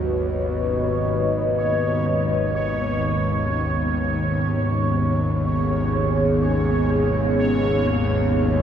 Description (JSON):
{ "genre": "dark ambient drone", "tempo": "free time", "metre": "none", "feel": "none", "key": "unclear", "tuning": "A4 = 440 Hz", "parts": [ { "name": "dark analog pad", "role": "sustained chords", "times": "0.0-8.6 s", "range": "B3 to D#5", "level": "-23 LUFS", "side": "equal", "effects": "chorus, shimmer reverb" }, { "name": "bowed-like drone", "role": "drone", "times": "0.0-8.6 s", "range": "G#1 to D#2", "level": "-22 LUFS", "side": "equal", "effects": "built-in reverb" }, { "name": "bubbling stepped-filter texture", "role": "texture", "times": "0.0-8.6 s", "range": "C#5", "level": "-28 LUFS", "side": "right 1 dB", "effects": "chorus, built-in reverb, shimmer reverb" } ], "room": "wet plate reverb, RT60 3.0 s", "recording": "none", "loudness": "-19 LUFS", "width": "side -9 dB against mid", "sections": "0.0-8.6 A section", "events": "none", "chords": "0.0 G#m" }